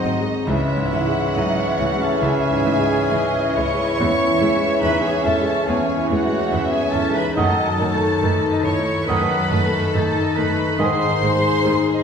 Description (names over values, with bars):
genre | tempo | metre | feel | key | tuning
classical, romantic movement for piano and orchestra | 70 BPM | 4/4 | rubato | C# minor | A4 = 441 Hz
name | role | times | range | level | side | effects
bright concert grand piano | melody | 0.0-12.0 s | C#2 to D#5 | -23 LUFS | left 1 dB | none
dark studio violin section | melody | 0.0-12.0 s | G#4 to F#5 | -29 LUFS | left 3 dB | none
flute section | second line | 0.0-11.2 s | E5 to G#5 | -28 LUFS | left 1 dB | none
mellow clarinet | second line | 0.0-12.0 s | F#3 to E4 | -27 LUFS | left 3 dB | none
mellow cor anglais | second line | 0.0-11.1 s | B#4 to D#5 | -27 LUFS | right 3 dB | none
rich studio violin section | second line | 0.0-12.0 s | D#5 to C#6 | -29 LUFS | left 1 dB | none
mellow bassoon | accompaniment | 0.0-11.1 s | D#3 to E3 | -27 LUFS | right 1 dB | none
rich studio viola section | accompaniment | 0.0-11.7 s | D#3 to B#3 | -29 LUFS | right 1 dB | none
dark French horn section | sustained chords | 0.0-12.0 s | D#3 to D#4 | -28 LUFS | left 2 dB | none
dark studio double bass section | bass | 0.0-11.7 s | G#1 to F#2 | -28 LUFS | right 3 dB | none
warm studio cello section | bass | 0.0-12.0 s | D#4 to C#5 | -25 LUFS | right 2 dB | none
room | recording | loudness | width
wet recital hall reverb, RT60 1.3 s | recorded in a church or concert hall | -17 LUFS | side -6 dB against mid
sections
0.0-12.0 A section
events
none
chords
0.5 C#m; 4.0 C#m/E; 7.4 D#dim/F#; 10.8 G#